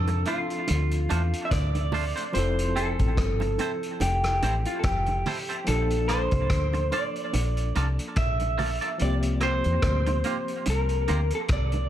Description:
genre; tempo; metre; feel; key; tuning
lovers rock reggae; 72 BPM; 4/4; swing 56% on 16ths; F major; A4 = 441 Hz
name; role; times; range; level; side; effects
electric guitar through a small old amp; melody; 0.0-11.9 s; F4 to E5; -29 LUFS; right 1 dB; spring reverb, tape echo
barky tine electric piano; accompaniment; 0.0-11.9 s; F3 to A4; -33 LUFS; left 2 dB; fast tremolo, tape echo
deep dub fingered electric bass; bass; 0.0-11.9 s; F1 to F2; -26 LUFS; equal; none
twangy electric guitar; stabs; 0.1-11.2 s; A3 to D5; -34 LUFS; right 4 dB; wide subtle chorus, tape echo
vintage drum kit; drums; 0.1-11.9 s; hi-hat, kick drum, rim click; -31 LUFS; equal; gated reverb
bongos; percussion; 0.1-11.9 s; none; -36 LUFS; right 5 dB; none
room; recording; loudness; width
small room ambience; none; -23 LUFS; side -11 dB against mid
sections
0.0-11.9 A section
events
none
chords
0.0 Dm7; 2.3 Fmaj7; 5.7 Bbmaj7; 9.0 C7sus4

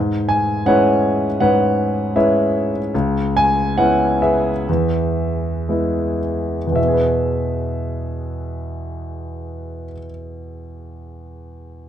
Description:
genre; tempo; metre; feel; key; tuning
classical, lyrical solo piano; 53-82 BPM; 4/4; rubato; E major; A4 = 441 Hz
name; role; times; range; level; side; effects
clear grand piano; solo; 0.0-11.9 s; C#2 to G#5; -17 LUFS; equal; none
room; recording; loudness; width
light reverb; dark, warm production; -16 LUFS; side -10 dB against mid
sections
0.0-6.8 A section; 6.8-11.2 B section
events
slowing down 0.0-6.8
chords
0.0 E6/G#; 2.9 C#m7; 4.7 E

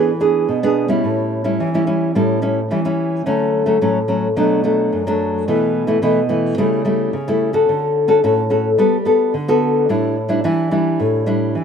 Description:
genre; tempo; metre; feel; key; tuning
samba; 108 BPM; 4/4; straight; unclear; A4 = 440 Hz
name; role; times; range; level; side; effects
nylon-string guitar; solo; 0.0-11.6 s; F#2 to A4; -15 LUFS; equal; slapback echo
room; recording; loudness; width
light reverb; recorded outdoors, with no room sound; -15 LUFS; side -7 dB against mid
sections
0.0-11.6 A section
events
none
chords
0.0 E7; 1.0 A7; 3.3 Dmaj7; 4.4 Bm7; 5.5 B7sus4; 6.6 A7/C#; 7.7 Dmaj7; 8.8 Gmaj9; 9.9 A7sus4

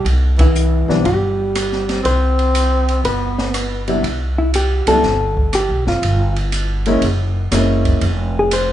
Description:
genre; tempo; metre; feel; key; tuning
jazz, small-group swing and bop; 121 BPM; 4/4; swing 68% on 8ths; C major; A4 = 436 Hz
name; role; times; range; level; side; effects
hollow-body jazz guitar; melody; 0.0-8.7 s; E4 to C5; -19 LUFS; left 1 dB; none
breathy tenor saxophone; second line; 0.0-3.8 s; E3 to C4; -21 LUFS; equal; none
upright bass; bass; 0.0-8.7 s; F1 to Db2; -18 LUFS; equal; none
open jazz drum kit; drums; 0.1-8.7 s; hi-hat, kick drum, ride cymbal, rim click, snare drum; -22 LUFS; right 1 dB; none
warm upright piano; accompaniment; 0.9-8.0 s; C3 to E4; -19 LUFS; left 1 dB; none
room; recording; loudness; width
moderate large studio reverb, RT60 1.2 s; band playing live in one room, nothing above 10.5 kHz; -14 LUFS; side -12 dB against mid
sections
0.0-4.0 A section; 4.0-8.7 A section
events
band accent 0.3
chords
0.1 G6; 4.0 Cmaj7(no3); 6.0 Gdim; 7.0 F#9; 8.0 Fm

